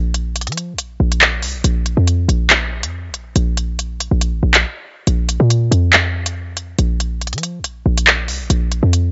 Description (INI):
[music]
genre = hip hop, drill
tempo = 140 BPM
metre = 4/4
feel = half-time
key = unclear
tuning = A4 = 440 Hz
[part]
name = short 808-style bass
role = bass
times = 0.0-9.1 s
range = A1 to F3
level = -19 LUFS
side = equal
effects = none
[part]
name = drill drum kit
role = drums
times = 0.1-9.0 s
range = handclaps, hi-hat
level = -17 LUFS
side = equal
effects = none
[sound]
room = digital ambience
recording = home recording on cassette, nothing above 7.8 kHz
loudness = -17 LUFS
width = mono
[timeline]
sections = 0.0-9.1 A section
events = break 4.6-5.1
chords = none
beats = 0.36 0.79 1.21 | 1.64 2.07 2.50 2.93 | 3.36 3.79 4.21 4.64 | 5.07 5.50 5.93 6.36 | 6.79 7.21 7.64 8.07 | 8.50 8.93